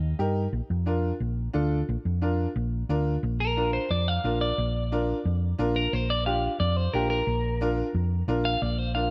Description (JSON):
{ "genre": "latin, cumbia", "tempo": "178 BPM", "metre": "4/4", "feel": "straight", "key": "Bb major", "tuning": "A4 = 440 Hz", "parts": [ { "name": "hollow-body short-scale fingered electric bass", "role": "bass", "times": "0.0-9.1 s", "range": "Bb1 to G2", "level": "-29 LUFS", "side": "equal", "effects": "none" }, { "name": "clear upright piano", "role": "accompaniment", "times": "0.2-9.1 s", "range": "D4 to Bb4", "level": "-33 LUFS", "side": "equal", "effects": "none" }, { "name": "clean electric guitar", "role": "melody", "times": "3.4-9.1 s", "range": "Bb4 to F5", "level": "-31 LUFS", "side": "equal", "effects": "spring reverb, slapback echo" } ], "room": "light reverb", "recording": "none", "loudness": "-27 LUFS", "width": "mono", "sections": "0.0-3.2 A section; 3.2-9.1 B section", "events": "clean electric guitar solo 3.2-9.1", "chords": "0.0 Eb; 0.5 Bb" }